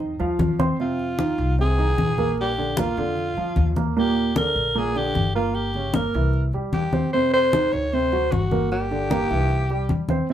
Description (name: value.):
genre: Afro-Cuban jazz.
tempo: 152 BPM.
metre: 4/4.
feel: straight.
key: F minor.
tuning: A4 = 438 Hz.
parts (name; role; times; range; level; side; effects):
dark baby grand piano; accompaniment; 0.0-10.3 s; Bb2 to C6; -25 LUFS; right 3 dB; none.
upright bass; bass; 0.0-10.3 s; G1 to F2; -26 LUFS; left 1 dB; none.
congas; percussion; 0.0-10.3 s; none; -25 LUFS; left 2 dB; none.
growling alto saxophone; melody; 0.8-10.1 s; F4 to Db5; -24 LUFS; left 1 dB; none.
room: moderate studio ambience, RT60 0.5 s.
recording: band playing live in one room.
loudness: -20 LUFS.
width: side -10 dB against mid.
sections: 0.8-10.3 A section.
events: none.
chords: 0.0 F7(no3); 0.8 Fm7; 2.4 Bb; 4.0 Ebmaj7; 5.5 Gdim; 6.3 C; 7.1 F5; 7.9 D7; 8.7 Gm; 9.5 C.